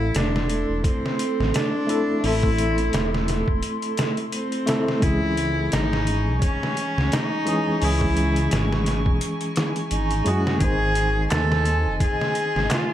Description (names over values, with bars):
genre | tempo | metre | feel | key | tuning
trip hop | 86 BPM | 4/4 | swing 56% on 16ths | A harmonic minor | A4 = 441 Hz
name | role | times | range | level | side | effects
warm cello | melody | 0.0-12.9 s | C4 to A4 | -26 LUFS | left 1 dB | dub echo
tine electric piano | accompaniment | 0.0-12.9 s | D#3 to B#4 | -27 LUFS | equal | overdrive, tremolo, vintage 12-bit sampler grit, tape echo
warbly tape-like pad | sustained chords | 0.0-12.9 s | A4 to C#6 | -31 LUFS | right 2 dB | chorus, built-in reverb, phaser
dark detuned saw bass | bass | 0.0-12.7 s | E1 to F#2 | -24 LUFS | equal | none
trip hop sampler-style drum kit | drums | 0.1-12.9 s | hi-hat, kick drum, snare drum | -25 LUFS | equal | none
darbuka | percussion | 11.3-12.9 s | none | -32 LUFS | right 3 dB | none
room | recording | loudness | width
light reverb, digital ambience | vinyl crackle | -20 LUFS | side -12 dB against mid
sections
0.0-12.9 A section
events
none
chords
0.0 Am; 5.0 C#m; 10.6 G#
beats
0.14 0.84 1.54 | 2.23 2.93 3.63 4.33 | 5.03 5.72 6.42 7.12 | 7.82 8.51 9.21 9.91 | 10.61 11.30 12.00 12.70